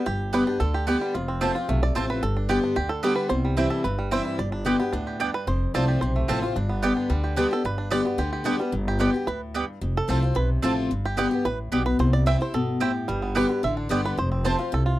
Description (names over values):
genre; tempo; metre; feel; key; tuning
bluegrass; 221 BPM; 4/4; straight; G mixolydian; A4 = 442 Hz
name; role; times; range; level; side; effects
bluegrass banjo; melody; 0.0-15.0 s; D3 to E5; -29 LUFS; right 3 dB; none
picked steel-string acoustic guitar; accompaniment; 0.0-15.0 s; F2 to G4; -26 LUFS; left 3 dB; none
upright bass; bass; 0.1-15.0 s; F1 to D2; -26 LUFS; equal; none
mandolin; stabs; 0.3-14.5 s; B3 to A5; -26 LUFS; right 5 dB; none
room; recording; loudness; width
light reverb; dry, close 1970s-style studio recording; -22 LUFS; side -15 dB against mid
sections
0.1-8.7 A section; 8.7-15.0 A section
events
five-string banjo solo 0.1-15.0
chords
0.1 G; 1.1 F; 2.2 G; 3.3 C; 4.4 G; 5.5 F; 6.6 G; 9.8 F; 10.9 G; 12.0 C; 13.1 G; 14.2 F